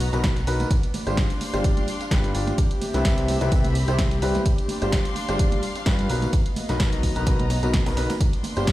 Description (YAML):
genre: piano house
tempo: 128 BPM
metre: 4/4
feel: swing 54% on 16ths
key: G mixolydian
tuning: A4 = 440 Hz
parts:
  - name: fat analog bass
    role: bass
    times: 0.0-8.7 s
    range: G1 to G2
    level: -25 LUFS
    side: equal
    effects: sidechain pumping
  - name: breakbeat sampler-style drum kit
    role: drums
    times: 0.0-8.7 s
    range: hi-hat, ride cymbal, snare drum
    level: -39 LUFS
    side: right 1 dB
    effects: none
  - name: punchy analog drum machine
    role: drums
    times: 0.0-8.7 s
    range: hi-hat, snare drum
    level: -31 LUFS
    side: equal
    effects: none
  - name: warm studio string section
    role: texture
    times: 0.0-8.7 s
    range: B3 to C6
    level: -32 LUFS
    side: left 1 dB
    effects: sidechain pumping
  - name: clear grand piano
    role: riff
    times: 0.1-8.7 s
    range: B2 to D5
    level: -28 LUFS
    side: left 1 dB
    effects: sidechain pumping, low-pass filter, digital delay
  - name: tambourine and congas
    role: percussion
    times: 0.1-8.7 s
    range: none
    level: -35 LUFS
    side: right 3 dB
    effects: none
  - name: electronic kick drum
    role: drums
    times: 0.2-8.7 s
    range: none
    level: -23 LUFS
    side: equal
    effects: none
room: little or no reverb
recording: played on a big sound system in a bare room, stone room reverb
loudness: -20 LUFS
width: side -16 dB against mid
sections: 0.0-8.7 A section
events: none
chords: 0.0 Bmaj7; 0.7 G7sus4; 2.6 Cmaj7; 4.5 G7sus4; 6.1 Bmaj7; 8.2 G7sus4